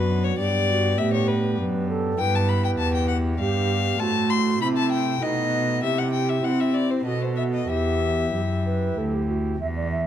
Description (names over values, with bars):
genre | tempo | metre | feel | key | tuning
classical, baroque-style sonata movement with continuo | 98 BPM | 3/4 | straight | E minor | A4 = 438 Hz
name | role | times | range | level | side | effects
rich violin | melody | 0.0-9.0 s | B4 to C6 | -26 LUFS | left 6 dB | none
mellow baroque flute | second line | 0.0-10.1 s | D#4 to E5 | -28 LUFS | right 5 dB | none
pipe organ, principal | accompaniment | 0.0-10.1 s | D2 to C5 | -28 LUFS | left 1 dB | none
rich cello | bass | 0.0-10.1 s | D2 to C4 | -25 LUFS | right 1 dB | none
room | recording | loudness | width
wet recital hall reverb, RT60 1.4 s | close, detailed microphones | -21 LUFS | side -10 dB against mid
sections
0.0-9.6 A section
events
none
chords
0.4 G; 2.2 Em/G; 3.4 G7; 4.0 Am; 5.2 B7; 5.8 C; 7.1 B5; 7.7 Em